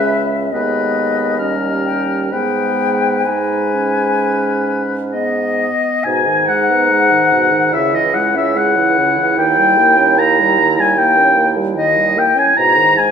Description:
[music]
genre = classical, slow romantic movement for wind quintet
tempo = 62-76 BPM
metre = 4/4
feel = rubato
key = G# minor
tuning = A4 = 440 Hz
[part]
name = concert flute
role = melody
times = 0.0-13.1 s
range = D#5 to A#5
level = -20 LUFS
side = left 7 dB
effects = none
[part]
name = warm oboe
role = second line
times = 0.0-13.1 s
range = A#4 to A#5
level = -15 LUFS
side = left 1 dB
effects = none
[part]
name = clear clarinet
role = accompaniment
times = 0.0-13.1 s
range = B3 to E4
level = -22 LUFS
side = right 7 dB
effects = none
[part]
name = mellow French horn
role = accompaniment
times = 0.0-13.1 s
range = B2 to C#4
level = -23 LUFS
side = right 2 dB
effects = none
[part]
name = warm bassoon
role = bass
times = 0.0-13.1 s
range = C#2 to G#2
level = -20 LUFS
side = right 3 dB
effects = none
[sound]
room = wet recital hall reverb, RT60 1.5 s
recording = minimal, uncompressed stereo recording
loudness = -12 LUFS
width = side -7 dB against mid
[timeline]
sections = 0.0-6.1 A section; 6.1-13.1 A section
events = none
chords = 0.0 C#m7; 0.5 G#m/D#; 1.4 D#7; 2.3 G#m; 7.7 C#m; 9.4 D#7b9; 12.6 G#m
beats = 0.53 1.39 | 2.31 3.26 4.21 5.14 | 6.05 6.90 7.74 8.56 | 9.38 10.19 10.99 11.79 | 12.59

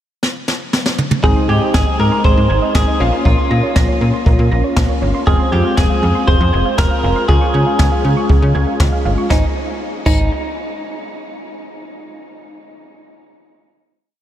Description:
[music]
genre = synth-pop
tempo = 119 BPM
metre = 4/4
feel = straight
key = Ab major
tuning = A4 = 442 Hz
[part]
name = jazz brush drum kit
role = drums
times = 0.2-10.2 s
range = crash cymbal, kick drum, snare drum, toms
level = -16 LUFS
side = equal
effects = none
[part]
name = direct-recorded clean electric guitar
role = melody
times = 1.2-10.3 s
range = Eb4 to C5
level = -20 LUFS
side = equal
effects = lush chorus, tape echo
[part]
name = funky polysynth comp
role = accompaniment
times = 1.2-9.3 s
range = Ab3 to F4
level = -21 LUFS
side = left 1 dB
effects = chorus
[part]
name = soft round pluck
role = arpeggios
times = 1.2-10.3 s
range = Eb4 to Bb6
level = -26 LUFS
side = right 5 dB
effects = chorus, tape echo
[part]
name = slap-like FM bass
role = bass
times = 1.2-10.3 s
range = F1 to Db3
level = -16 LUFS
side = equal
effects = none
[sound]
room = moderate huge ambient reverb, RT60 7.9 s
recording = dreamy mix soaked in reverb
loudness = -12 LUFS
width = side -11 dB against mid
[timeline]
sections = 0.0-1.2 pickup bar; 1.2-9.3 verse; 9.3-11.3 final chord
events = drum fill 0.2-1.2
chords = 0.0 N.C.; 1.2 Ab; 3.0 Bbmadd9; 5.3 Fm; 7.3 Db; 9.3 Ab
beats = 0.23 0.73 | 1.24 1.74 2.25 2.75 | 3.25 3.76 4.26 4.77 | 5.27 5.77 6.28 6.78 | 7.29 7.79 8.29 8.80 | 9.30 9.81

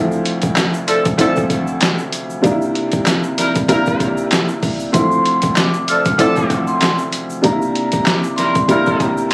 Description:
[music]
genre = hip hop, boom-bap hip-hop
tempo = 96 BPM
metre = 4/4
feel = swing 55% on 16ths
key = D minor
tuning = A4 = 440 Hz
[part]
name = warm upright piano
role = accompaniment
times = 0.0-9.3 s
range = D2 to E4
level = -18 LUFS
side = equal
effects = cassette tape, high-pass filter, low-pass filter
[part]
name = percussive tonewheel organ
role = sustained chords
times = 0.0-9.3 s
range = D2 to E4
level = -27 LUFS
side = equal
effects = none
[part]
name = tube shaker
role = percussion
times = 0.1-9.3 s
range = none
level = -36 LUFS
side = equal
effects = none
[part]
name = trip hop sampler-style drum kit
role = drums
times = 0.3-9.3 s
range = handclaps, hi-hat, kick drum, snare drum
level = -17 LUFS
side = equal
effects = overdrive
[part]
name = clear horn section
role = stabs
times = 0.9-9.1 s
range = F3 to Bb4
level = -19 LUFS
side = equal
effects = high-pass filter, low-pass filter, analog delay
[part]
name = vibraphone with medium hard mallets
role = melody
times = 4.9-9.3 s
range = Bb5 to F6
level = -19 LUFS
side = equal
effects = high-pass filter, low-pass filter, analog delay
[sound]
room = light reverb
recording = recorded on a phone in the room, club reverb, vinyl crackle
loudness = -13 LUFS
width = side -25 dB against mid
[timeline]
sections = 0.0-9.3 A section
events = none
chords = 0.0 Dm7; 2.4 C7; 4.9 Dm7; 7.4 C7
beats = 0.57 1.19 1.82 | 2.44 3.07 3.69 4.32 | 4.94 5.57 6.19 6.82 | 7.44 8.07 8.69 9.32

